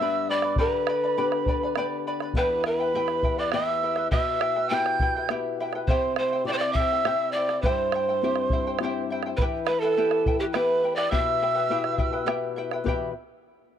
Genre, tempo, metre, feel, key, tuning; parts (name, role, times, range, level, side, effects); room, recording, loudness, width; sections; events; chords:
andean folk, Andean ensemble; 103 BPM; 3/4; straight; E minor; A4 = 440 Hz
breathy mellow pan flute; melody; 0.0-12.3 s; G4 to G5; -25 LUFS; equal
quena; second line; 0.0-12.3 s; G5 to G6; -31 LUFS; right 9 dB; slapback echo
charango; accompaniment; 0.0-13.1 s; E4 to B5; -32 LUFS; left 1 dB
flamenco guitar; accompaniment; 0.0-13.1 s; E2 to B4; -32 LUFS; left 8 dB
bombo; percussion; 0.4-13.1 s; -28 LUFS; right 1 dB
studio reverb; dry, close 1970s-style studio recording; -22 LUFS; side -9 dB against mid
0.0-12.9 A section
0.0 G; 2.4 Em; 5.9 C; 9.4 Em